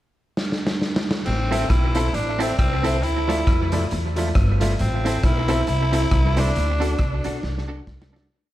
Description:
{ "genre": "ska", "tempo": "136 BPM", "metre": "4/4", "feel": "swing 58% on 8ths", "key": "A minor", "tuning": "A4 = 441 Hz", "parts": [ { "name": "raw garage drum kit", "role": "drums", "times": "0.4-8.3 s", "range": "crash cymbal, hi-hat, kick drum, rim click, snare drum", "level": "-24 LUFS", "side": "equal", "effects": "none" }, { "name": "breathy tenor saxophone", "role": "melody", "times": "1.3-7.7 s", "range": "C4 to E4", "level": "-26 LUFS", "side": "equal", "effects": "tape echo" }, { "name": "upright bass", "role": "bass", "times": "1.3-8.2 s", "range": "G1 to F2", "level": "-23 LUFS", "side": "equal", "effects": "none" }, { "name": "electric guitar at the edge of break-up", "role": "accompaniment", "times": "1.5-8.2 s", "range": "F3 to A4", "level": "-29 LUFS", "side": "right 3 dB", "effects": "tremolo, tape echo" }, { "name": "warm upright piano", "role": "stabs", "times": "1.5-8.2 s", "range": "D4 to E5", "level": "-28 LUFS", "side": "left 2 dB", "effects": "tape echo" } ], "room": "light reverb", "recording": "none", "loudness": "-19 LUFS", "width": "side -14 dB against mid", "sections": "0.0-1.3 pickup bar; 1.3-8.3 head", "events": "drum fill 0.4-1.3, 7.4-8.3; fade-out 6.6-8.3", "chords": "0.0 N.C.; 1.3 Am; 3.0 Dmadd9; 4.8 Am; 6.6 D" }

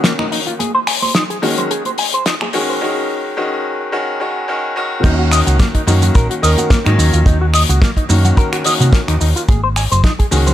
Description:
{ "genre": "nu-disco, nu disco", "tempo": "108 BPM", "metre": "4/4", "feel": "swing 54% on 16ths", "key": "Eb dorian", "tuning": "A4 = 439 Hz", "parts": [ { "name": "clear concert grand piano", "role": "accompaniment", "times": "0.0-10.5 s", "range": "Eb3 to Bb4", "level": "-19 LUFS", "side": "left 1 dB", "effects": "dub echo" }, { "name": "electric guitar with an envelope filter", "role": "riff", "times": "0.0-10.5 s", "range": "Bb3 to Ab5", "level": "-20 LUFS", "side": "left 1 dB", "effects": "analog chorus, low-pass filter, dub echo" }, { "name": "damped 70s drum kit", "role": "drums", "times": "0.0-10.5 s", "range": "crash cymbal, finger snaps, hi-hat, shaker, snare drum", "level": "-19 LUFS", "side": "left 1 dB", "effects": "small room ambience" }, { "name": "congas", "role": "percussion", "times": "0.2-10.5 s", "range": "none", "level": "-26 LUFS", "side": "right 2 dB", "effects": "none" }, { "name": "hollow-body short-scale fingered electric bass", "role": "bass", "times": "5.0-10.5 s", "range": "Gb1 to C3", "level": "-13 LUFS", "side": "equal", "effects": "none" }, { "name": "kick drum", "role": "drums", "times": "5.0-10.3 s", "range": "none", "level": "-12 LUFS", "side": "equal", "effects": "small room ambience" } ], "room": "light reverb", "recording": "high-pass filter", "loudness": "-12 LUFS", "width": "side -12 dB against mid", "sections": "0.0-5.0 A section; 5.0-10.5 B section", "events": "build-up 0.0-5.0; filter sweep on clean electric guitar 0.0-5.0; break 2.8-5.0; drop 5.0-10.5", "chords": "0.0 Ebm7; 0.6 Ab7sus4; 5.0 Ebm7; 9.5 Ab7sus4" }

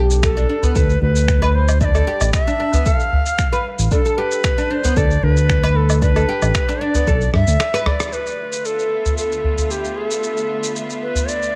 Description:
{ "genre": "organic downtempo", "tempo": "114 BPM", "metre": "4/4", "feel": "straight", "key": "D dorian", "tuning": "A4 = 440 Hz", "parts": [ { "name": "oud", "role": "arpeggios", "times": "0.0-8.1 s", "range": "B3 to B4", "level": "-26 LUFS", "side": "equal", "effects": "delay" }, { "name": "smooth gliding synth bass", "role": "bass", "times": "0.0-7.6 s", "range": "A1 to G2", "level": "-18 LUFS", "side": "equal", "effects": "sidechain pumping" }, { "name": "electronic shaker, finger snaps, woodblock and rim click", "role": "drums", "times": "0.1-11.5 s", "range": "none", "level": "-27 LUFS", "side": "equal", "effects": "small room ambience" }, { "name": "bright reedy Native American-style cedar flute", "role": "melody", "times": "0.2-11.6 s", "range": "G4 to F5", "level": "-24 LUFS", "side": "equal", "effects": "delay" }, { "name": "electronic kick drum", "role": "drums", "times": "0.2-7.2 s", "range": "none", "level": "-22 LUFS", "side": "equal", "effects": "small room ambience" }, { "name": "udu", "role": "percussion", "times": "0.6-11.3 s", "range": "none", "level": "-23 LUFS", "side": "equal", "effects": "none" }, { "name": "rich symphonic string section", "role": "sustained chords", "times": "8.1-11.6 s", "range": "D3 to E5", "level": "-30 LUFS", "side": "equal", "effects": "sidechain pumping" } ], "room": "light reverb, small room ambience", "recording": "dark, warm production", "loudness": "-18 LUFS", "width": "mono", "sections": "0.0-8.1 A section; 8.1-11.6 B section", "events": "drum fill 7.3-8.1; break 7.6-8.1; band accent 8.0", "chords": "0.0 D5; 8.1 Dm69" }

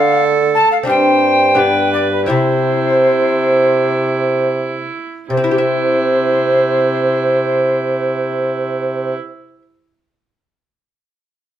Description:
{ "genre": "classical, renaissance-style consort dance", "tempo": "77-88 BPM", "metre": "4/4", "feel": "straight", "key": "C major", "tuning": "A4 = 441 Hz", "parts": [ { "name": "mellow alto recorder", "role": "melody", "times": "0.0-9.2 s", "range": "B4 to A5", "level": "-16 LUFS", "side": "left 1 dB", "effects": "none" }, { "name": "warm viola", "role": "second line", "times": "0.0-9.1 s", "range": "E4 to C5", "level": "-20 LUFS", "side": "right 6 dB", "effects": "none" }, { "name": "lute", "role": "accompaniment", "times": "0.0-9.6 s", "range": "G2 to E5", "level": "-21 LUFS", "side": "left 5 dB", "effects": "none" }, { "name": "mellow bassoon", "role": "bass", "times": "0.0-9.2 s", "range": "G2 to D3", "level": "-18 LUFS", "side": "right 2 dB", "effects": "none" } ], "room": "moderate stone room reverb, RT60 0.9 s", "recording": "none", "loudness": "-12 LUFS", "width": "side -10 dB against mid", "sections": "0.0-5.3 A section; 5.3-8.4 B section", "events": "slowing down 0.0-5.3", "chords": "0.0 Dm; 0.9 Gsus4; 1.6 G; 2.3 C" }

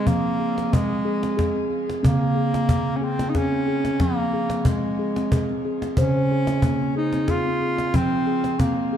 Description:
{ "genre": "world meditative, meditative tuned percussion", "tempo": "91 BPM", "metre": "3/4", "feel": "swing 53% on 16ths", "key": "F minor", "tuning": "A4 = 440 Hz", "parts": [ { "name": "bright bass clarinet", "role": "melody", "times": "0.0-9.0 s", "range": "Ab3 to F4", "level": "-25 LUFS", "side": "equal", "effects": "shimmer reverb, ping-pong delay" }, { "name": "steel tongue drum", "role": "arpeggios", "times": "0.0-9.0 s", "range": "Db3 to C5", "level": "-23 LUFS", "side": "equal", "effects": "shimmer reverb, ping-pong delay" }, { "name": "cajon", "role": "percussion", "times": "0.1-8.8 s", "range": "none", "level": "-24 LUFS", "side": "equal", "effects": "none" } ], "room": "wet echo chamber reverb, RT60 1.3 s, small room ambience", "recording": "dark, warm production", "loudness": "-20 LUFS", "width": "side -9 dB against mid", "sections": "0.0-9.0 A section", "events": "none", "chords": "0.1 Fm; 2.0 Db5; 4.0 Fm; 6.0 Db; 7.9 Fm" }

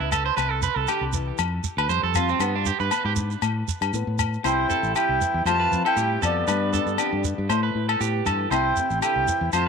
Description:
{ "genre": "highlife guitar band", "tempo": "118 BPM", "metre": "4/4", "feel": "swing 54% on 16ths", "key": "C major", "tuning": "A4 = 441 Hz", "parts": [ { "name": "flamenco guitar", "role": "accompaniment", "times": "0.0-9.7 s", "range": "F2 to G4", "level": "-32 LUFS", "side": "left 15 dB", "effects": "none" }, { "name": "electric guitar at the edge of break-up", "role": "arpeggios", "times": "0.0-9.7 s", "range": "B3 to C5", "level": "-26 LUFS", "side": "right 9 dB", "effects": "tape echo" }, { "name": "fingered electric bass", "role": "bass", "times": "0.0-9.7 s", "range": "A1 to F3", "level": "-27 LUFS", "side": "left 1 dB", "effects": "none" }, { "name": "agogo bells", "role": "percussion", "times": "0.1-9.7 s", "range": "none", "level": "-29 LUFS", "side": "left 14 dB", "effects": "none" }, { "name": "shekere", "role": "percussion", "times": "0.1-9.7 s", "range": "none", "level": "-30 LUFS", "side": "right 3 dB", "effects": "none" }, { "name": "bright reedy baroque flute", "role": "melody", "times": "4.4-9.7 s", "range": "D5 to A5", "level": "-24 LUFS", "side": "right 2 dB", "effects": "none" }, { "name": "breathy trumpet", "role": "second line", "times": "4.5-9.7 s", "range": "B3 to F4", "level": "-31 LUFS", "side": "left 12 dB", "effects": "tape echo" } ], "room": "wet spring reverb, RT60 1.7 s, small room ambience", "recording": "1960s-style stereo with parts hard left and right", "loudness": "-21 LUFS", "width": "side -5 dB against mid", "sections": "0.0-4.4 A section; 4.4-9.7 B section", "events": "clean electric guitar solo 0.0-4.4", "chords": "0.4 C; 1.4 Fsus2; 2.4 G; 3.4 Asus2; 4.4 C; 5.5 Fadd9; 6.5 G; 7.5 Asus2; 8.5 C" }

